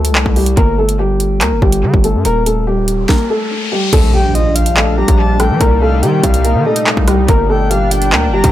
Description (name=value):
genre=hip hop, drill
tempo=143 BPM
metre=4/4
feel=half-time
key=G minor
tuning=A4 = 436 Hz
part: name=dark upright piano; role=melody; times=0.0-8.5 s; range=F3 to Bb4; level=-16 LUFS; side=left 1 dB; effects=analog delay
part: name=distorted 808-style bass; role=bass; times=0.0-8.5 s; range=Eb1 to F3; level=-15 LUFS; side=equal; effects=distortion
part: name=drill drum kit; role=drums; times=0.0-8.5 s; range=crash cymbal, handclaps, hi-hat, kick drum, rim click, snare drum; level=-14 LUFS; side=equal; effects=none
part: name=riser and impact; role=sound effects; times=2.8-5.6 s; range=none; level=-22 LUFS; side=equal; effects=none
part: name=sweeping resonant pad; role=sustained chords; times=4.2-8.5 s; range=Bb2 to Eb4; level=-21 LUFS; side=right 2 dB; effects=chorus
part: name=breathy flute-like synth lead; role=second line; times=4.1-8.5 s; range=Eb5 to Bb5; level=-19 LUFS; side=left 4 dB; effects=chorus, analog delay
room=little or no reverb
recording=echo-heavy mix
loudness=-10 LUFS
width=side -13 dB against mid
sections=0.0-3.9 A section; 3.9-8.5 B section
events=riser 2.8-3.9; impact 3.9-5.6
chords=0.0 C5; 0.6 Gm; 2.2 Eb; 3.9 Bb6; 5.6 Cm7; 7.3 Gm